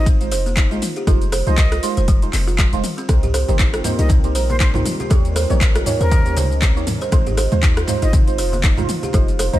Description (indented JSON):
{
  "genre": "afro house",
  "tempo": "119 BPM",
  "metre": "4/4",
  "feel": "swing 57% on 16ths",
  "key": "unclear",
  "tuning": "A4 = 444 Hz",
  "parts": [
    { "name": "breathy silver concert flute", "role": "melody", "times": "0.0-9.6 s", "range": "Bb4 to Eb5", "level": "-30 LUFS", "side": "left 1 dB", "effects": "dub echo" },
    { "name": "buzzing kalimba", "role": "arpeggios", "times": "0.0-9.5 s", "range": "G3 to C5", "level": "-26 LUFS", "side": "right 3 dB", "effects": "sidechain pumping, dub echo" },
    { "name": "deep mellow chord stab", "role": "stabs", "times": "0.0-9.6 s", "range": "Ab3 to Db5", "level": "-26 LUFS", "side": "right 4 dB", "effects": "chorus, phaser, sidechain pumping, dub echo" },
    { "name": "warm 808-style bass", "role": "bass", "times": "0.0-9.6 s", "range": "F1 to Eb2", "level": "-20 LUFS", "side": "equal", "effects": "sidechain pumping" },
    { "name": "deep house drum kit", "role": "drums", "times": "0.1-9.6 s", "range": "handclaps, hi-hat, rim click, shaker, toms", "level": "-24 LUFS", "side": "left 1 dB", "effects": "overdrive, studio reverb" },
    { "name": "electronic kick drum", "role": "drums", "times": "0.1-9.3 s", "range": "none", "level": "-16 LUFS", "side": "equal", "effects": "studio reverb" },
    { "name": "dark analog pad", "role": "sustained chords", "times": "3.4-9.6 s", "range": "G3 to C5", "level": "-29 LUFS", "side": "left 1 dB", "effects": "chorus, vintage 12-bit sampler grit, sidechain pumping" },
    { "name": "congas", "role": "percussion", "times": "3.1-9.6 s", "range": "none", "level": "-26 LUFS", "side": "right 2 dB", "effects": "none" }
  ],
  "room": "digital ambience",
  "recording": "none",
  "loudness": "-15 LUFS",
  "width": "side -14 dB against mid",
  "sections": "0.0-9.6 A section",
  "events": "none",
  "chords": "0.0 Fm7; 3.1 Cm7; 5.1 Eb7; 7.1 Fm7",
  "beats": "0.07 0.57 | 1.07 1.58 2.08 2.59 | 3.09 3.59 4.10 4.60 | 5.11 5.61 6.12 6.62 | 7.12 7.63 8.13 8.64 | 9.14"
}